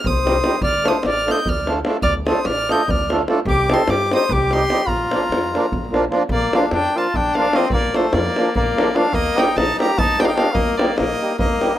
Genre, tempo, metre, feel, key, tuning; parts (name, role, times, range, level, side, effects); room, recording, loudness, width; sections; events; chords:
balkan folk, Balkan wedding band; 296 BPM (eighths); 7/8; straight; Bb major; A4 = 440 Hz
clear violin; melody; 0.0-11.8 s; C5 to G6; -24 LUFS; right 2 dB
upright bass; bass; 0.0-11.5 s; A1 to G2; -27 LUFS; equal
mellow trumpet; second line; 0.1-11.8 s; A3 to Eb5; -21 LUFS; left 2 dB
davul; percussion; 0.1-11.7 s; -21 LUFS; left 1 dB
accordion; accompaniment; 0.2-11.7 s; F3 to A4; -22 LUFS; right 2 dB
light reverb, small room ambience; rough home demo mix; -16 LUFS; side -12 dB against mid
0.0-6.3 A section; 6.3-11.8 B section
0.0 Cm; 0.6 Dm; 3.5 Cm; 4.9 Bb; 9.1 Eb